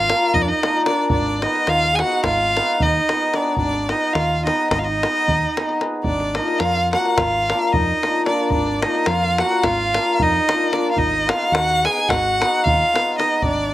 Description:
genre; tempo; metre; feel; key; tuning
balkan folk, Balkan wedding band; 219 BPM (eighths); 9/8; straight; Ab dorian sharp4; A4 = 439 Hz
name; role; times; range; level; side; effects
clear violin; melody; 0.0-13.7 s; D5 to Ab5; -20 LUFS; equal; none
accordion; second line; 0.0-13.7 s; D4 to Ab4; -25 LUFS; right 3 dB; slapback echo
deep dub fingered electric bass; bass; 0.0-13.7 s; Ab1 to F2; -25 LUFS; equal; none
cimbalom; accompaniment; 0.1-13.4 s; Bb3 to Cb5; -23 LUFS; left 2 dB; none
davul; percussion; 0.1-13.6 s; none; -24 LUFS; left 1 dB; none
room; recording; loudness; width
light reverb; recorded outdoors, with no room sound; -16 LUFS; side -14 dB against mid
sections
0.0-13.7 A section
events
none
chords
0.0 Bb/Ab; 1.1 Abm; 6.0 Bb/Ab; 11.0 Abm

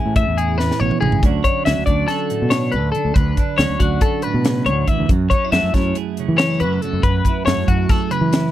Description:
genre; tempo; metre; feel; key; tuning
math rock and midwest emo; 279 BPM (eighths); 9/8; straight; unclear; A4 = 437 Hz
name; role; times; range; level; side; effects
twelve-string electric guitar; accompaniment; 0.0-8.5 s; F#2 to A4; -23 LUFS; right 9 dB; none
twelve-string electric guitar; arpeggios; 0.0-8.5 s; F#4 to G#5; -21 LUFS; left 5 dB; none
growling fingered electric bass; bass; 0.1-8.5 s; A1 to E3; -20 LUFS; equal; overdrive
crisp fusion drum kit; drums; 0.2-8.4 s; hi-hat, kick drum, snare drum, toms; -19 LUFS; equal; none
room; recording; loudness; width
little or no reverb; dry, close 1970s-style studio recording; -15 LUFS; side -13 dB against mid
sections
0.0-1.2 A section; 1.2-8.5 B section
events
drum fill 0.6-1.2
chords
0.0 Amaj9; 1.2 Dmaj7; 5.1 F#m7

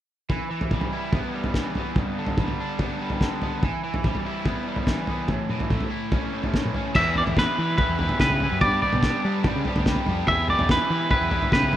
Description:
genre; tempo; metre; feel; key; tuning
indie rock; 144 BPM; 4/4; straight; E dorian; A4 = 440 Hz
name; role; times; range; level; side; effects
crunchy overdriven guitar; riff; 0.3-11.8 s; G2 to G4; -27 LUFS; equal; spring reverb
cloth-damped thuddy drum kit; drums; 0.3-11.8 s; crash cymbal, kick drum, snare drum, toms; -25 LUFS; equal; none
twangy electric guitar; melody; 7.0-11.8 s; B4 to E5; -23 LUFS; right 1 dB; vibrato effect, tape echo
growling fingered electric bass; bass; 7.0-11.8 s; D2 to G3; -27 LUFS; equal; overdrive
room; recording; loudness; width
light reverb; rough home demo mix; -21 LUFS; side -12 dB against mid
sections
0.3-7.0 A section; 7.0-11.8 B section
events
none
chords
0.3 Em; 2.0 G; 3.6 Em; 5.3 A; 7.0 Em; 8.6 G; 10.3 Em

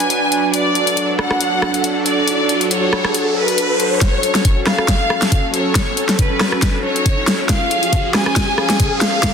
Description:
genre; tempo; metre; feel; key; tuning
heavy wobble dubstep; 138 BPM; 4/4; swing 54% on 16ths, half-time; F# harmonic minor; A4 = 437 Hz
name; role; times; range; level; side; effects
rich studio violin section; melody; 0.0-9.3 s; B4 to G#5; -19 LUFS; equal; dub echo
supersaw pad; sustained chords; 0.0-9.3 s; E#3 to B4; -25 LUFS; right 1 dB; sidechain pumping
dubstep drum kit; drums; 0.0-9.3 s; hi-hat, rim click, snare drum; -18 LUFS; left 1 dB; studio reverb, soft clipping on snare
airy breathy pad; texture; 0.0-9.3 s; C#4 to E#5; -22 LUFS; right 1 dB; chorus, sidechain pumping
riser; sound effects; 1.5-9.3 s; none; -24 LUFS; left 1 dB; none
electronic kick drum; drums; 4.0-9.3 s; none; -17 LUFS; equal; overdrive, studio reverb
room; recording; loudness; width
light reverb, digital ambience; dense, heavily limited modern master; -14 LUFS; side -6 dB against mid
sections
0.0-4.0 A section; 4.0-9.3 B section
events
riser 1.5-4.0, 4.0-9.3; build-up 4.0-9.3; drum fill 4.0-9.3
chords
0.0 Bm; 0.5 D; 4.0 F#m; 7.5 C#

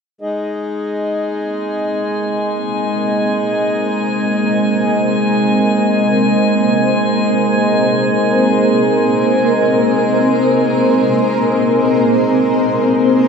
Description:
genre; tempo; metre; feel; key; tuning
ambient; free time; none; none; Ab major; A4 = 440 Hz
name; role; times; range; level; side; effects
granular cloud pad; sustained chords; 1.5-13.3 s; Bb3 to C5; -15 LUFS; equal; built-in reverb
pedal harmonium; drone; 0.2-13.3 s; Ab3 to Eb4; -20 LUFS; left 1 dB; none
drifting glass-harmonics texture; texture; 1.4-13.3 s; Ab3 to Ab5; -18 LUFS; right 1 dB; chorus, built-in reverb
room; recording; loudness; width
wet huge ambient reverb, RT60 8.0 s; in a vast, echoing space; -13 LUFS; side -5 dB against mid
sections
0.2-13.3 A section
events
fade-in on ambient pad 0.2-13.3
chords
0.2 Abadd9

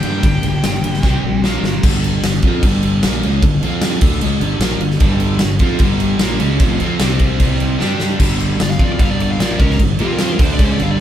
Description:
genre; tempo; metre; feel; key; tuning
hard rock; 151 BPM; 4/4; straight; unclear; A4 = 440 Hz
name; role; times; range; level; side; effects
smooth overdriven lead guitar; melody; 0.0-1.4, 8.6-11.0 s; G4 to G5; -25 LUFS; left 2 dB; none
crunchy overdriven guitar; riff; 0.0-11.0 s; F2 to G4; -22 LUFS; right 4 dB; none
distorted electric guitar; riff; 0.0-11.0 s; F2 to G4; -22 LUFS; left 6 dB; distortion
distorted electric guitar; riff; 0.0-1.8, 5.0-11.0 s; F2 to G4; -24 LUFS; equal; distortion
fuzz fingered electric bass; bass; 0.0-11.0 s; F1 to G2; -20 LUFS; equal; overdrive
huge arena drum kit; drums; 0.0-10.9 s; crash cymbal, kick drum, ride cymbal, snare drum; -16 LUFS; equal; none
room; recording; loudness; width
moderate studio reverb, RT60 0.8 s; band playing live in one room; -13 LUFS; side -10 dB against mid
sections
0.0-1.8 A section; 1.8-8.2 B section; 8.2-11.0 C section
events
drum fill 1.0-1.8, 7.8-8.2; lead electric guitar solo 8.2-11.0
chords
0.0 Gm; 1.0 C5; 1.4 Bb5; 1.8 Gm; 3.6 F5; 4.0 Gm; 7.0 C5; 7.8 G5; 8.2 Gm; 10.0 F5; 10.4 G5

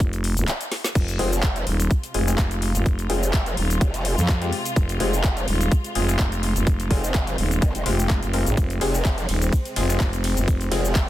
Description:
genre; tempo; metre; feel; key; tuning
bass house; 126 BPM; 4/4; swing 54% on 16ths; F minor; A4 = 440 Hz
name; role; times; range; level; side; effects
growling FM bass; bass; 0.0-10.7 s; Eb1 to F2; -23 LUFS; equal; overdrive, sidechain pumping
electronic kick drum; drums; 0.0-11.1 s; none; -20 LUFS; equal; none
garage drum kit; drums; 0.0-11.1 s; crash cymbal, handclaps, hi-hat, ride cymbal, shaker, snare drum; -28 LUFS; left 2 dB; none
warm studio string section; sustained chords; 1.0-11.1 s; C3 to F4; -31 LUFS; equal; vintage 12-bit sampler grit, sidechain pumping
band-passed chord stab; stabs; 1.2-10.9 s; Ab3 to Bb4; -30 LUFS; left 3 dB; chorus, sidechain pumping, ping-pong delay
growl bass; bass; 1.2-11.1 s; F1; -24 LUFS; equal; chorus, overdrive, sidechain pumping
room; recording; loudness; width
little or no reverb; dense, heavily limited modern master; -20 LUFS; side -14 dB against mid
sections
0.0-11.1 A section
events
break 0.5-1.0; drum fill 0.7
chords
0.0 Fm

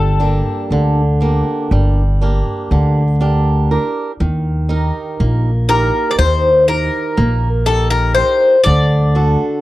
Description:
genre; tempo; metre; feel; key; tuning
greek folk, Greek bouzouki band; 121 BPM (eighths); 9/8; straight; unclear; A4 = 440 Hz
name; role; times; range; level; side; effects
Greek bouzouki; melody; 0.0-9.6 s; A4 to D5; -15 LUFS; left 3 dB; none
picked swing-style acoustic guitar; accompaniment; 0.0-9.6 s; D3 to Bb4; -20 LUFS; right 3 dB; none
upright bass; bass; 0.0-9.3 s; G1 to Eb2; -14 LUFS; equal; none
room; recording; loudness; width
little or no reverb; dry, close 1970s-style studio recording; -12 LUFS; side -16 dB against mid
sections
0.0-9.6 A section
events
none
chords
0.0 Gm; 4.2 Eb; 8.7 D

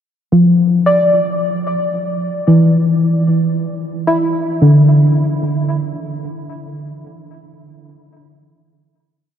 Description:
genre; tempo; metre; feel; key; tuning
ambient; 56 BPM; 3/4; straight; unclear; A4 = 440 Hz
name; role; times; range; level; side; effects
soft round pluck; solo; 0.3-9.4 s; D3 to D5; -12 LUFS; equal; analog chorus, tape echo
room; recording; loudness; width
wet huge ambient reverb, RT60 8.5 s; dark, warm production; -12 LUFS; side -9 dB against mid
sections
0.0-9.4 A section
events
fade-out 5.7-9.4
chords
0.0 Dmadd9; 3.5 Dsus2

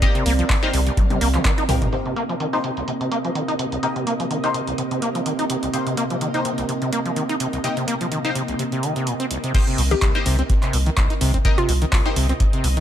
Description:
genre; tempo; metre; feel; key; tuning
acid house; 126 BPM; 4/4; swing 55% on 16ths; C minor; A4 = 442 Hz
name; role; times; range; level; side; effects
string machine, full ensemble; sustained chords; 0.0-12.8 s; C3 to F5; -30 LUFS; equal; ensemble chorus, sidechain pumping
overdriven acid bass; riff; 0.0-12.8 s; C2 to Eb4; -24 LUFS; equal; wide subtle chorus, sidechain pumping, dub echo
band-passed chord stab; stabs; 0.0-12.2 s; Bb3 to Eb5; -29 LUFS; left 3 dB; phaser, ensemble chorus, dub echo
electronic kick drum; drums; 0.0-1.9, 9.5-12.5 s; none; -20 LUFS; equal; none
punchy analog drum machine; drums; 0.0-12.8 s; crash cymbal, handclaps, hi-hat, toms; -28 LUFS; right 1 dB; low-pass filter on hats, low-pass filter on snare, low-pass filter on toms, low-pass filter on cymbals, low-pass filter on room
warbly tape-like pad; texture; 0.0-9.5 s; C4 to Eb5; -29 LUFS; right 4 dB; chorus, built-in reverb, sidechain pumping
saturated sub bass; bass; 0.3-1.9, 9.8-12.8 s; C2; -20 LUFS; equal; sidechain pumping
hollow square pluck; melody; 9.9-11.9 s; F4 to G4; -26 LUFS; left 2 dB; chorus, ping-pong delay
room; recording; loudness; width
light reverb; none; -19 LUFS; side -10 dB against mid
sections
0.0-1.9 A section; 1.9-9.5 B section; 9.5-12.8 A section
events
drop 0.0-1.9, 9.5-12.8; drum fill 1.0-1.9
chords
0.0 Cm7

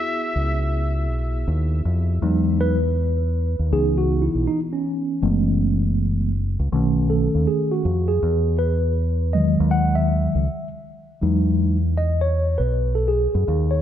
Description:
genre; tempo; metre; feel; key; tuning
hip hop, jazz-hop; 80 BPM; 4/4; swing 65% on 16ths; E major; A4 = 439 Hz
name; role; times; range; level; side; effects
trumpet with straight mute; melody; 0.0-1.5 s; E5; -29 LUFS; left 1 dB; tape echo
mellow tine electric piano; accompaniment; 0.0-13.8 s; D#3 to F#5; -22 LUFS; equal; medium stereo tremolo
deep dub fingered electric bass; bass; 0.4-13.8 s; F#1 to F#2; -21 LUFS; equal; none
room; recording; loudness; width
light reverb; dark, warm production; -18 LUFS; side -10 dB against mid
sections
0.0-2.2 A section; 2.2-13.8 B section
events
tine electric piano solo 2.2-13.8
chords
0.0 Emaj9; 3.7 C#m9; 5.2 F#m11; 6.7 B9; 8.2 Emaj9

